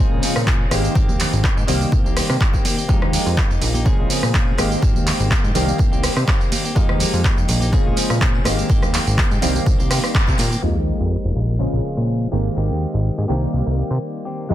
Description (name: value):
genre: filtered disco house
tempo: 124 BPM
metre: 4/4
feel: swing 54% on 16ths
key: F minor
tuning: A4 = 440 Hz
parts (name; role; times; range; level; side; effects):
- mellow clav; accompaniment; 0.0-14.5 s; Db3 to C5; -24 LUFS; equal; phaser, sidechain pumping, low-pass filter
- direct-recorded clean electric guitar; riff; 0.0-14.5 s; Eb3 to Ab4; -28 LUFS; left 2 dB; sidechain pumping, low-pass filter
- plucky analog bass; bass; 0.0-14.5 s; F1 to C3; -21 LUFS; equal; tube saturation, sidechain pumping, low-pass filter
- punchy analog drum machine; drums; 0.2-10.6 s; handclaps, hi-hat, rim click, tambourine; -23 LUFS; right 1 dB; sidechain pumping on perc, sidechain pumping on hats
- tambourine and congas; percussion; 0.2-10.6 s; none; -31 LUFS; right 3 dB; none
- electronic kick drum; drums; 0.5-10.4 s; none; -18 LUFS; equal; none
- sub drop; sound effects; 10.6-12.6 s; none; -28 LUFS; equal; none
room: little or no reverb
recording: dense, heavily limited modern master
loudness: -16 LUFS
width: side -12 dB against mid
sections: 0.0-10.6 A section; 10.6-14.5 B section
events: band accent 10.1; impact 10.6-12.6; filter sweep 10.6-14.5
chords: 0.0 Bbm9; 0.7 Abmaj9; 1.7 Cm7; 2.9 Fm11; 3.9 Bbm9; 4.6 Abmaj9; 5.6 Cm7; 6.8 Fm11; 7.7 Bbm9; 8.5 Abmaj9; 9.4 Cm7; 10.6 Fm11; 11.6 Bbm9; 12.3 Abmaj9; 13.3 Cm7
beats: 0.47 | 0.95 1.44 1.92 2.41 | 2.89 3.37 3.86 4.34 | 4.83 5.31 5.79 6.28 | 6.76 7.25 7.73 8.21 | 8.70 9.18 9.66 10.15 | 10.63 11.12 11.60 12.08 | 12.57 13.05 13.54 14.02 | 14.50